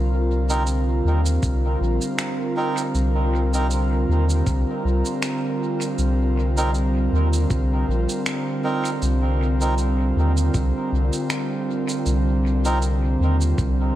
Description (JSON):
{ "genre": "ambient dub", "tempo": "79 BPM", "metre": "4/4", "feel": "swing 55% on 16ths", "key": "C minor", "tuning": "A4 = 438 Hz", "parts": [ { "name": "airy breathy pad", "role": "sustained chords", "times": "0.0-14.0 s", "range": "D3 to Bb4", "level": "-24 LUFS", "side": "right 1 dB", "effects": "chorus" }, { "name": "soft dub sub bass", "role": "bass", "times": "0.0-13.9 s", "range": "Bb1 to Eb2", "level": "-20 LUFS", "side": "equal", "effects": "none" }, { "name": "melodica", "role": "stabs", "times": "0.5-12.8 s", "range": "C4 to Bb4", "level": "-30 LUFS", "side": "right 2 dB", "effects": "dub echo" }, { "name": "electronic shaker and finger snaps", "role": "drums", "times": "0.5-13.7 s", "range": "none", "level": "-32 LUFS", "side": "right 2 dB", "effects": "dub echo" }, { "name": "electronic kick drum", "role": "drums", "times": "1.4-13.7 s", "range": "none", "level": "-25 LUFS", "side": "equal", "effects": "none" } ], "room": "light reverb, digital ambience", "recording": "none", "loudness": "-19 LUFS", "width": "side -13 dB against mid", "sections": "0.0-14.0 A section", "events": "none", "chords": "0.0 Cm7" }